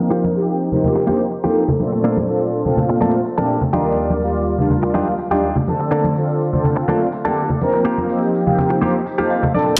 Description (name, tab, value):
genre	filtered disco house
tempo	124 BPM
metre	4/4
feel	straight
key	Bb major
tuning	A4 = 444 Hz
part	mellow synth brass	accompaniment	0.0-9.8 s	Eb2 to D5	-20 LUFS	equal	chorus, phaser, sidechain pumping, low-pass filter
part	direct-recorded clean electric guitar	riff	0.0-9.8 s	D3 to F5	-24 LUFS	equal	vintage 12-bit sampler grit, sidechain pumping, low-pass filter
part	tambourine and congas	percussion	0.1-9.8 s	none	-25 LUFS	equal	sidechain pumping on perc, low-pass filter on perc
room	wet lush hall reverb, RT60 1.8 s, digital ambience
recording	dreamy mix soaked in reverb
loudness	-18 LUFS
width	mono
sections	0.0-9.8 A section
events	filter sweep 0.0-9.8; clean electric guitar fill 9.1-9.8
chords	0.1 F9sus4; 2.0 Bbmaj7; 3.7 Ebmaj9; 5.9 Bbmaj7/D; 7.9 F9sus4